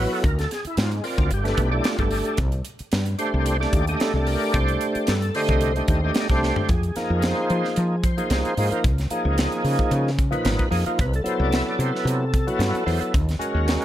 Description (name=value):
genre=electric jazz fusion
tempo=112 BPM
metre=4/4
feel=straight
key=unclear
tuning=A4 = 439 Hz
part: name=overdriven tonewheel organ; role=accompaniment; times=0.0-13.8 s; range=Bb2 to E5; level=-24 LUFS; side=equal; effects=slow rotary speaker, chorus vibrato
part: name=woody fretless electric bass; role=bass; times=0.0-13.8 s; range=G1 to F3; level=-23 LUFS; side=equal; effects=none
part: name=crisp fusion drum kit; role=drums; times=0.2-13.8 s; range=hi-hat, kick drum, snare drum, toms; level=-25 LUFS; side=equal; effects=none
room=light reverb, small room ambience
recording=none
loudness=-20 LUFS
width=side -12 dB against mid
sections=0.0-6.7 A section; 6.7-13.8 A section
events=drum fill 6.4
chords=0.2 Dm7b5; 1.3 G; 2.4 Cm69; 6.7 Fm7; 8.8 Db9; 11.0 Cmaj7; 13.1 Ebm7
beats=| 0.24 0.78 1.32 1.85 | 2.39 2.93 3.47 4.00 | 4.54 5.08 5.62 6.15 | 6.69 7.23 7.76 8.30 | 8.84 9.38 9.92 10.45 | 10.99 11.53 12.07 12.60 | 13.14 13.68